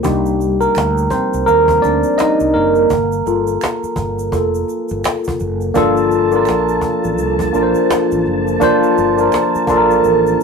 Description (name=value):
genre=R&B, neo-soul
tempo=84 BPM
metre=4/4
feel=swing 60% on 16ths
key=G minor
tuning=A4 = 438 Hz
part: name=tine electric piano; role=accompaniment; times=0.0-10.4 s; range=G3 to Eb5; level=-13 LUFS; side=equal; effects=phaser
part: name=cajon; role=drums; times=0.0-10.4 s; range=none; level=-22 LUFS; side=right 1 dB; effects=none
part: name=tube shaker and finger snaps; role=percussion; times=0.0-10.4 s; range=none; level=-35 LUFS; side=right 7 dB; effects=none
part: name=mellow fretless electric bass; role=bass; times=0.1-10.3 s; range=F1 to Eb2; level=-23 LUFS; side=equal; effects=none
part: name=tonewheel organ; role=sustained chords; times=5.8-10.4 s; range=F3 to A5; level=-24 LUFS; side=right 2 dB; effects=slow rotary speaker, chorus vibrato
room=moderate studio reverb, RT60 0.6 s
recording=rough rehearsal-room recording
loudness=-13 LUFS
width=side -5 dB against mid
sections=0.0-5.8 A section; 5.8-10.4 A section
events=tine electric piano solo 0.0-5.8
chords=0.0 Cm9; 2.9 Gm9